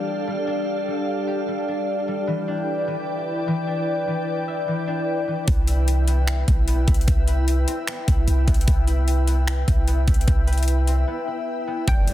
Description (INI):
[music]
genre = hip hop, atmospheric cloud-rap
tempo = 150 BPM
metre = 4/4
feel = half-time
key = unclear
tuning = A4 = 440 Hz
[part]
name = glassy FM pad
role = sustained chords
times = 0.0-12.1 s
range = D4 to G5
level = -27 LUFS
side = left 1 dB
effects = ensemble chorus, built-in reverb, sidechain pumping
[part]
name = concert harp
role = arpeggios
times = 0.0-12.1 s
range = E3 to E5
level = -29 LUFS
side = left 1 dB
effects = low-pass filter, digital delay
[part]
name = warm 808-style bass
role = bass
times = 5.5-12.1 s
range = F1 to C2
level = -19 LUFS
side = equal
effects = none
[part]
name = trap drum kit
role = drums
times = 5.5-12.1 s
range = finger snaps, hi-hat, kick drum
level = -21 LUFS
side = equal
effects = soft clipping on snare
[part]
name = hollow square pluck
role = melody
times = 11.9-12.1 s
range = G5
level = -30 LUFS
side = left 1 dB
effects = chorus, low-pass filter
[part]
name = impact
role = sound effects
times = 11.9-12.1 s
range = none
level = -27 LUFS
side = equal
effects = none
[sound]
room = light reverb, digital ambience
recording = dense, heavily limited modern master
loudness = -19 LUFS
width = side -13 dB against mid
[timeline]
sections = 0.0-11.9 A section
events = break 11.1-11.9; impact 11.9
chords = 0.0 F69; 2.3 Em7; 5.5 Cmaj7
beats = 0.28 | 0.68 1.08 1.48 1.88 | 2.28 2.68 3.08 3.48 | 3.88 4.28 4.68 5.08 | 5.48 5.88 6.28 6.68 | 7.08 7.48 7.88 8.28 | 8.68 9.08 9.48 9.88 | 10.28 10.68 11.08 11.48 | 11.88